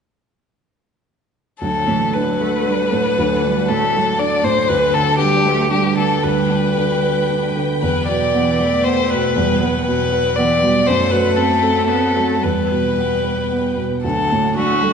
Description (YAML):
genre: neoclassical piano and strings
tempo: 109-122 BPM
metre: 3/4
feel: rubato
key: unclear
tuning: A4 = 440 Hz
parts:
  - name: rich violin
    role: melody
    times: 1.6-14.9 s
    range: F#4 to D5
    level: -18 LUFS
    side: left 3 dB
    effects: none
  - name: rich cello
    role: second line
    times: 1.6-14.9 s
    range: E3 to B3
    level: -23 LUFS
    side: right 5 dB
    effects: none
  - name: felt-muted upright piano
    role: accompaniment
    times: 1.6-14.9 s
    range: D2 to B4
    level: -20 LUFS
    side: right 2 dB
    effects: none
  - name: rich chamber string section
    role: sustained chords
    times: 1.6-14.9 s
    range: B3 to G5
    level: -27 LUFS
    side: right 1 dB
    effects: none
room: wet recital hall reverb, RT60 1.6 s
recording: recorded in a church or concert hall, nothing above 10.4 kHz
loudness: -15 LUFS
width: side -6 dB against mid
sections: 1.6-14.0 A section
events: none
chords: 1.6 D; 4.7 G/D; 7.8 Em; 10.9 F#dim; 12.4 Em; 14.0 D